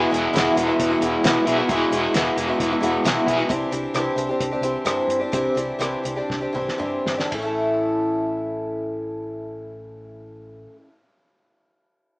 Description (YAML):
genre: folk rock and heartland rock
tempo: 113-134 BPM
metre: 4/4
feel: straight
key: unclear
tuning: A4 = 439 Hz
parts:
  - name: picked twelve-string acoustic guitar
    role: accompaniment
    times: 0.0-11.0 s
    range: A2 to A4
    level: -22 LUFS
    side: equal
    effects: none
  - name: overdriven electric guitar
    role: riff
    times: 0.0-3.5 s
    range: E2 to E4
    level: -21 LUFS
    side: equal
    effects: harmonic tremolo
  - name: fingered electric bass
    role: bass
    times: 0.0-10.7 s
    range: E1 to G2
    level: -36 LUFS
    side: equal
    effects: none
  - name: cloth-damped thuddy drum kit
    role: drums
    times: 0.1-7.4 s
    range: hi-hat, kick drum, ride cymbal, rim click, snare drum, toms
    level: -25 LUFS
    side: equal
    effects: none
room: moderate studio reverb, RT60 0.8 s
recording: band playing live in one room, small speaker sound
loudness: -20 LUFS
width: side -25 dB against mid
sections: 0.0-7.3 A section; 7.3-11.6 B section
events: slowing down 3.5-7.3; drum fill 6.3-7.3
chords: 0.0 Eadd9; 3.5 Cadd9; 7.3 A